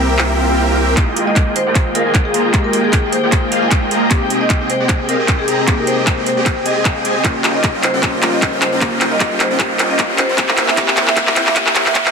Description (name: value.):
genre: future bass.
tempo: 153 BPM.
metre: 4/4.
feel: swing 55% on 16ths, half-time.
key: F minor.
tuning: A4 = 440 Hz.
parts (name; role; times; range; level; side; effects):
glassy digital keys; accompaniment; 0.0-12.1 s; Ab3 to G4; -24 LUFS; left 2 dB; chorus, sidechain pumping, digital delay.
muted chamber string section; sustained chords; 0.0-12.1 s; C3 to G5; -26 LUFS; left 2 dB; sidechain pumping.
concert harp; arpeggios; 0.0-3.4 s; E4 to G5; -27 LUFS; left 5 dB; none.
supersaw chords; riff; 0.0-12.1 s; Bb3 to Bb5; -18 LUFS; right 1 dB; lush chorus, sidechain pumping, low-pass filter, digital delay.
saturated sub bass; bass; 0.0-1.0 s; C2; -18 LUFS; equal; sidechain pumping.
trap drum kit; drums; 0.2-12.1 s; handclaps, hi-hat; -17 LUFS; equal; overdrive.
swell and riser; sound effects; 0.3-12.1 s; none; -25 LUFS; right 1 dB; none.
electronic kick drum; drums; 1.0-12.0 s; none; -17 LUFS; equal; none.
marimba with hard mallets; melody; 1.3-12.1 s; Ab4 to F5; -20 LUFS; left 1 dB; sidechain pumping, dub echo.
room: light reverb.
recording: dense, heavily limited modern master, high-pass filter.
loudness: -12 LUFS.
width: side -5 dB against mid.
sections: 1.0-12.1 A section.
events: swell 0.3-1.0; build-up 1.0-12.1; drum fill 1.0-12.1; filter sweep 1.0-12.1.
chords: 0.0 C7; 1.0 Fm11; 4.1 Abmaj7; 7.2 Eb9; 10.4 C7.